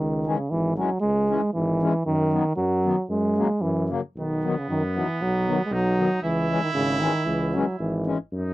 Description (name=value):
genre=alpine folk, alpine dance band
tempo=116 BPM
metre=2/4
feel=rubato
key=unclear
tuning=A4 = 441 Hz
part: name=warm euphonium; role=melody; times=0.0-8.2 s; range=C#3 to G#3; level=-23 LUFS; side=right 1 dB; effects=none
part: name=warm tuba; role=bass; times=0.0-8.5 s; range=G#1 to F#2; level=-28 LUFS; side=left 1 dB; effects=none
part: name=mellow accordion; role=accompaniment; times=0.3-8.2 s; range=C#3 to C#4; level=-26 LUFS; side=left 4 dB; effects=none
part: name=bright trumpet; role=second line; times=4.2-8.5 s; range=B3 to E4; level=-30 LUFS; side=right 4 dB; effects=none
room=light reverb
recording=dry, close 1970s-style studio recording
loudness=-22 LUFS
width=side -17 dB against mid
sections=0.0-8.5 A section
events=none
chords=0.0 C#m; 2.1 B/F#; 3.1 F#add9; 4.2 B; 6.2 C#m